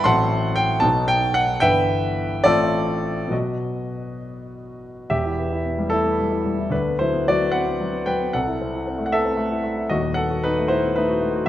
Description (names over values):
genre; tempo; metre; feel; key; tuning
classical, romantic character piece for solo piano; 66-79 BPM (dotted quarters); 6/8; rubato; unclear; A4 = 440 Hz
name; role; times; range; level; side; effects
warm grand piano; solo; 0.0-11.5 s; D#1 to C6; -19 LUFS; equal; none
room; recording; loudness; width
light reverb; close, detailed microphones; -19 LUFS; side -12 dB against mid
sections
0.0-5.1 A section; 5.1-11.5 B section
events
none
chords
0.1 F#m7b5/A; 0.8 B; 1.6 Em/G; 2.5 F/A; 3.3 B; 5.1 Em; 6.7 Bm/D; 8.3 Am/C; 9.9 B7/D#